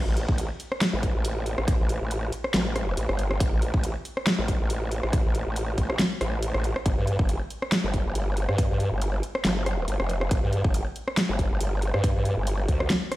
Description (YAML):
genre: heavy wobble dubstep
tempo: 139 BPM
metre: 4/4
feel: swing 55% on 16ths, half-time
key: unclear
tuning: A4 = 442 Hz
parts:
  - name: growl bass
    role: bass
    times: 0.0-12.9 s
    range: F1 to G2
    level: -26 LUFS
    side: equal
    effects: chorus, overdrive
  - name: big-room dance drum kit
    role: drums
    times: 0.2-13.2 s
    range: hi-hat, rim click, snare drum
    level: -28 LUFS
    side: equal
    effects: overdrive
  - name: electronic kick drum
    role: drums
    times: 0.3-12.8 s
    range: none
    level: -25 LUFS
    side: equal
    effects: overdrive
room: digital ambience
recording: played on a big sound system in a bare room, stone room reverb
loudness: -23 LUFS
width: side -16 dB against mid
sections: 0.0-13.2 A section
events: none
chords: none